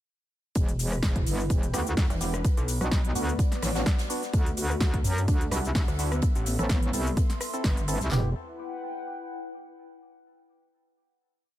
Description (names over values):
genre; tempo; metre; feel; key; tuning
bass house; 127 BPM; 4/4; swing 54% on 16ths; E minor; A4 = 440 Hz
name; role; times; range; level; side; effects
huge arena drum kit; drums; 0.5-8.1 s; hi-hat, snare drum; -43 LUFS; right 2 dB; high-pass filter on hats, high-pass filter on snare, high-pass filter on room
metallic wobble bass; bass; 0.6-8.3 s; E1 to F#2; -28 LUFS; equal; chorus, sidechain pumping
big-room dance drum kit; drums; 0.6-8.1 s; hi-hat, rim click, shaker, snare drum; -33 LUFS; equal; overdrive
house drum kit; drums; 0.6-8.2 s; handclaps, kick drum, snare drum, toms; -25 LUFS; equal; overdrive
warbly tape-like pad; texture; 0.6-10.0 s; B3 to C6; -38 LUFS; left 2 dB; chorus, built-in reverb, sidechain pumping
percussive organ stab; stabs; 1.7-8.3 s; B3 to A4; -36 LUFS; right 2 dB; wide subtle chorus, sidechain pumping, ping-pong delay
pulsing pluck wobble bass; bass; 2.1-2.8, 5.9-6.6 s; E1 to D2; -28 LUFS; equal; chorus, overdrive, sidechain pumping
breathy flute-like synth lead; melody; 4.6-7.2 s; B3 to F#4; -37 LUFS; left 1 dB; chorus, ping-pong delay
room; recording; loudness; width
digital ambience; none; -24 LUFS; side -14 dB against mid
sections
0.6-8.1 drop; 8.1-10.0 final chord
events
drop 0.6-8.1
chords
0.6 Em; 2.4 Bm; 4.3 Dadd9; 6.2 Am; 8.1 Em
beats
| 0.56 1.03 1.50 1.97 | 2.45 2.92 3.39 3.86 | 4.34 4.81 5.28 5.75 | 6.22 6.70 7.17 7.64 | 8.12 8.59 9.06 9.53